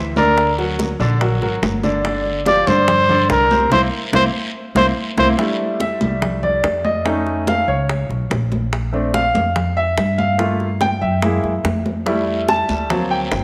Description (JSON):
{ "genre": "Afro-Cuban jazz", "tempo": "144 BPM", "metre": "4/4", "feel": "straight", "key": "F major", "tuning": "A4 = 440 Hz", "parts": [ { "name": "bright upright piano", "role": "accompaniment", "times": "0.0-13.4 s", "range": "C3 to A5", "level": "-22 LUFS", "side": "equal", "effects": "none" }, { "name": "upright bass", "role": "bass", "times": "0.0-13.4 s", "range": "G1 to G2", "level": "-25 LUFS", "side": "equal", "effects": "none" }, { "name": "breathy trumpet", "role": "melody", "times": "0.2-5.3 s", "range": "Bb4 to D5", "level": "-19 LUFS", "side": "equal", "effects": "none" }, { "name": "congas", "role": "percussion", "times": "0.2-13.4 s", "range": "none", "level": "-28 LUFS", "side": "equal", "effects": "none" }, { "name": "guiro", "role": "percussion", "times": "0.2-5.3, 12.1-13.4 s", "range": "none", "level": "-36 LUFS", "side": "equal", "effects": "none" }, { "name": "bongos", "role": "percussion", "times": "0.4-13.4 s", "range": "none", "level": "-29 LUFS", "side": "equal", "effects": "none" } ], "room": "wet echo chamber reverb, RT60 1.8 s", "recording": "none", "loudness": "-18 LUFS", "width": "mono", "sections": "0.0-5.4 A section; 5.4-13.4 B section", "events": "band accent 3.7-5.4; upright piano solo 5.4-13.4", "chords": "0.4 Daug; 2.0 Gm7; 3.7 C7; 5.4 Fmaj13; 7.1 Faug7; 8.7 Bbmaj9; 10.4 Gm9; 11.2 Gb9; 12.1 Fmaj7; 12.9 D7b13" }